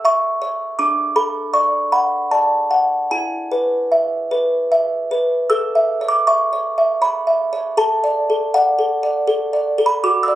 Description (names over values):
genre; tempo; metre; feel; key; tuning
classical, lullaby for music box; 78 BPM; 3/4; uneven beats, rubato; A major; A4 = 440 Hz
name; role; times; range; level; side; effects
music box; solo; 0.0-10.4 s; D4 to E6; -15 LUFS; equal; none
room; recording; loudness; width
light reverb; recorded on a phone in the room, club reverb; -15 LUFS; side -14 dB against mid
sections
0.0-5.5 A section; 5.5-10.4 B section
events
none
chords
0.0 A; 0.8 D; 3.1 E; 5.5 A; 7.8 D/A